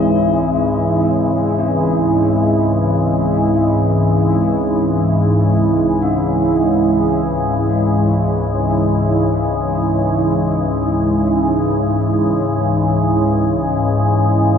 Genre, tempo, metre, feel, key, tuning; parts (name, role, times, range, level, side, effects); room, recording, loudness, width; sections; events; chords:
dark ambient drone; free time; C# harmonic minor; A4 = 438 Hz
sweeping resonant pad; sustained chords; 0.0-14.6 s; E3 to E4; -17 LUFS; right 2 dB; chorus
bronze singing bowl; arpeggios; 0.0-12.7 s; B#3 to C#4; -26 LUFS; left 5 dB; analog delay
organ-like drone; drone; 0.0-14.6 s; C#2 to G#2; -17 LUFS; left 2 dB; ensemble chorus, built-in reverb
wet lush hall reverb, RT60 2.5 s; dreamy mix soaked in reverb; -14 LUFS; side -7 dB against mid
0.0-14.6 A section
fade-out on singing bowl 0.0-14.6
0.0 C#m